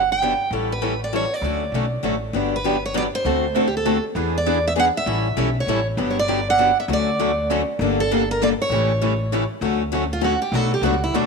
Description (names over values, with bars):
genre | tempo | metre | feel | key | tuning
acoustic string swing (jazz manouche) | 198 BPM | 3/4 | swing 60% on 8ths | D major | A4 = 440 Hz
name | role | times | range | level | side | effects
picked steel-string acoustic guitar | melody | 0.0-11.3 s | D4 to G5 | -22 LUFS | right 3 dB | none
upright bass | bass | 0.0-11.3 s | G1 to E2 | -26 LUFS | equal | none
picked steel-string acoustic guitar | accompaniment | 0.2-11.3 s | B2 to A4 | -24 LUFS | left 12 dB | none
picked swing-style acoustic guitar | accompaniment | 0.2-11.2 s | B2 to B4 | -26 LUFS | right 11 dB | none
room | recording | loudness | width
moderate plate reverb, RT60 3.5 s | 1960s-style stereo with parts hard left and right | -18 LUFS | side -4 dB against mid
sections
0.0-2.3 A section; 2.3-9.6 B section; 9.6-11.3 C section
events
steel-string acoustic guitar solo 9.6-11.3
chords
0.0 Gmaj7; 0.5 A9; 1.4 Dmaj7; 2.3 Gmaj7; 3.3 D7; 4.2 E7; 5.1 A9; 6.0 Gmaj7; 6.9 Dmaj7; 7.8 Gmadd9; 8.7 A7; 9.6 Dmaj7; 10.5 Bm9